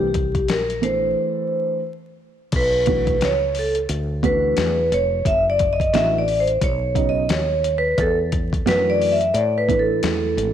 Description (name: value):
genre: hip hop, jazz-hop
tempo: 88 BPM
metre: 4/4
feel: swing 61% on 16ths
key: B minor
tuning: A4 = 439 Hz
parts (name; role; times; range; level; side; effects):
- vibraphone with medium hard mallets; melody; 0.0-10.5 s; G4 to E5; -20 LUFS; equal; none
- dark grand piano; accompaniment; 0.0-10.5 s; C#3 to A4; -25 LUFS; right 8 dB; none
- woody fretless electric bass; bass; 0.0-10.5 s; E#1 to A2; -25 LUFS; equal; none
- dusty soul sampler-style drum kit; drums; 0.1-10.5 s; crash cymbal, hi-hat, kick drum, snare drum; -25 LUFS; left 2 dB; overdrive
room: light reverb, small room ambience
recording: 1960s-style stereo, vinyl crackle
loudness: -17 LUFS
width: side -10 dB against mid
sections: 0.0-2.5 A section; 2.5-10.5 B section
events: break 1.2-2.5; vibraphone solo 2.5-10.5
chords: 0.0 C9; 2.5 Bm11; 5.3 F#m7; 6.6 B; 8.0 E9sus4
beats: 0.48 1.16 1.84 | 2.53 3.21 3.89 4.57 | 5.25 5.93 6.62 7.30 | 7.98 8.66 9.34 10.03